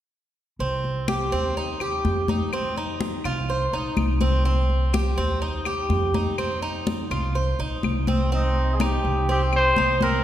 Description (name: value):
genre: latin, Cuban son and guajira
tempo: 124 BPM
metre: 4/4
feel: straight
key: C minor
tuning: A4 = 440 Hz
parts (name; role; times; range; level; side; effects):
- Cuban tres; arpeggios; 0.6-10.2 s; C4 to C5; -26 LUFS; right 1 dB; none
- upright bass; bass; 0.6-10.2 s; Bb1 to F2; -25 LUFS; equal; none
- congas; percussion; 0.6-10.2 s; none; -29 LUFS; left 3 dB; none
- claves; percussion; 1.1-9.8 s; none; -37 LUFS; left 4 dB; none
- warm trumpet; melody; 8.3-10.2 s; Eb4 to C5; -22 LUFS; equal; none
room: wet concert hall reverb, RT60 2.4 s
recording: recorded in a church or concert hall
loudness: -21 LUFS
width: side -11 dB against mid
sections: 0.6-8.3 A section; 8.3-10.2 B section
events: none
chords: 0.6 Cm; 2.5 F5; 4.5 Cm; 6.4 F5; 8.3 Cm